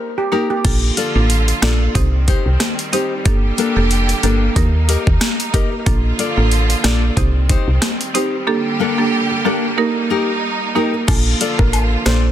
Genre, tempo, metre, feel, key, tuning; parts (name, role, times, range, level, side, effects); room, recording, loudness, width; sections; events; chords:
dancehall; 92 BPM; 4/4; swing 56% on 16ths; Bb major; A4 = 440 Hz
buzzing marimba with medium mallets; accompaniment; 0.0-12.3 s; Bb3 to C5; -22 LUFS; right 5 dB
steel pan; melody; 0.2-0.6, 11.6-12.2 s; G4 to C5; -24 LUFS; right 2 dB; tape echo
nylon-string guitar; arpeggios; 0.3-12.3 s; Bb3 to Eb5; -23 LUFS; left 8 dB; tape echo
clear studio string section; sustained chords; 0.6-12.3 s; D3 to A4; -23 LUFS; right 2 dB; sidechain pumping
woody FM bass; bass; 0.6-12.3 s; F1 to Eb2; -16 LUFS; equal
island pop drum kit; drums; 0.6-12.2 s; crash cymbal, hi-hat, kick drum, rim click, snare drum; -18 LUFS; equal; overdrive
woodblock and cabasa; percussion; 11.1-12.2 s; -27 LUFS; left 9 dB
small room reverb; dense, heavily limited modern master; -14 LUFS; side -11 dB against mid
0.6-11.1 A section; 11.1-12.3 B section
break 0.0-0.6
0.0 Eb; 0.6 Bbmaj7; 2.0 Cm; 3.3 Gmadd9; 4.6 Eb; 5.9 Bbmaj7; 7.2 Cm; 8.5 Gmadd9; 9.8 Eb; 11.1 Bbmaj7